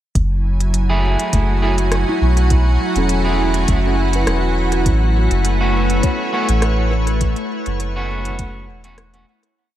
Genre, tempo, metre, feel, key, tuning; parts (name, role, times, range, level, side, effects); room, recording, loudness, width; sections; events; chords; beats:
ambient dub; 102 BPM; 4/4; swing 54% on 16ths; F# minor; A4 = 436 Hz
soft additive organ-like pad; sustained chords; 0.4-9.6 s; F#3 to G#5; -21 LUFS; equal; ensemble chorus, built-in reverb
soft dub sub bass; bass; 0.2-9.2 s; E1 to B1; -17 LUFS; equal
electronic kick drum; drums; 0.2-8.5 s; -19 LUFS; equal
organic electronic drum kit; drums; 0.2-9.5 s; hi-hat, rim click; -26 LUFS; equal; dub echo
electric guitar at the edge of break-up; stabs; 0.9-9.2 s; A3 to G#4; -25 LUFS; right 2 dB; spring reverb, dub echo
handpan; arpeggios; 1.3-9.8 s; A3 to C#5; -27 LUFS; right 1 dB; tape echo
light reverb, digital ambience; -15 LUFS; side -12 dB against mid
0.2-9.6 groove
fade-out 6.4-9.6
0.2 F#m9
| 0.16 0.74 1.33 1.92 | 2.51 3.10 3.69 4.27 | 4.86 5.45 6.04 6.63 | 7.21 7.80 8.39 8.98